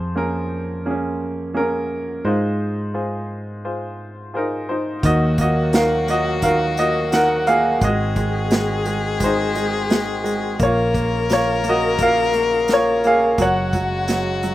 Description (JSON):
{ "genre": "acoustic folk-pop ballad", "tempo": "86 BPM", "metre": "4/4", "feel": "straight", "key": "unclear", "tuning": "A4 = 439 Hz", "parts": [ { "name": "bright baby grand piano", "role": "melody", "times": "0.0-14.5 s", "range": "Eb3 to Gb5", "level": "-20 LUFS", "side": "right 1 dB", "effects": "none" }, { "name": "mellow fretless electric bass", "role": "bass", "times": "0.0-14.5 s", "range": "Gb1 to Ab2", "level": "-25 LUFS", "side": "equal", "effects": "none" }, { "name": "warm violin", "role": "second line", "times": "5.0-14.5 s", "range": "Gb4 to Bb4", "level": "-24 LUFS", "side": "left 5 dB", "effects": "slapback echo" }, { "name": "hand-pumped harmonium", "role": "sustained chords", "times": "5.0-14.5 s", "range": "Db3 to F5", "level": "-30 LUFS", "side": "right 1 dB", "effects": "stereo widening" }, { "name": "unplugged drum kit", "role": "drums", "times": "5.0-14.5 s", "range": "hi-hat, kick drum, snare drum", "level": "-22 LUFS", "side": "equal", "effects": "none" } ], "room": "little or no reverb", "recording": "recorded outdoors, with no room sound", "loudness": "-17 LUFS", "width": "side -14 dB against mid", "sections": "0.0-5.0 A section; 5.0-14.5 B section", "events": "none", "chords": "0.0 Bbm7/F; 2.2 Ab6; 5.0 Ebm; 7.8 Ab7; 10.6 Bbm; 13.4 Gbsus2", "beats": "0.15 0.85 1.55 | 2.25 2.94 3.64 4.34 | 5.04 5.73 6.43 7.13 | 7.82 8.52 9.21 9.91 | 10.61 11.30 12.00 12.69 | 13.39 14.09" }